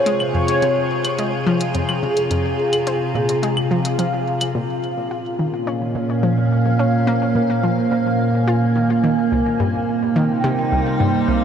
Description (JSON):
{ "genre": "ambient, sequencer-driven space music", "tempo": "107 BPM", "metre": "4/4", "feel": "straight", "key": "unclear", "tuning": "A4 = 440 Hz", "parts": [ { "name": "mellow horn-like synth lead", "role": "melody", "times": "0.0-11.4 s", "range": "Ab4 to Ab5", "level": "-24 LUFS", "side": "equal", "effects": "phaser, ensemble chorus, ping-pong delay" }, { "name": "evolving wavetable pad", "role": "sustained chords", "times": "0.0-11.4 s", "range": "Bb2 to F5", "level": "-19 LUFS", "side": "right 1 dB", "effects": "chorus, built-in reverb" }, { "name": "analog pluck", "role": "riff", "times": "0.1-11.4 s", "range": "C2 to F4", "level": "-23 LUFS", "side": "left 1 dB", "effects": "chorus, ping-pong delay" }, { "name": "electronic hi-hat and claves", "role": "percussion", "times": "0.1-4.5 s", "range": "none", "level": "-29 LUFS", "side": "left 2 dB", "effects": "overdrive, ping-pong delay" } ], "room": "wet huge ambient reverb, RT60 7.6 s", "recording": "cassette tape", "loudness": "-17 LUFS", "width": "side -8 dB against mid", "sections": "0.0-4.5 A section; 4.5-11.4 B section", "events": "none", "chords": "0.0 Fm; 4.5 Bbm; 9.0 Cm7" }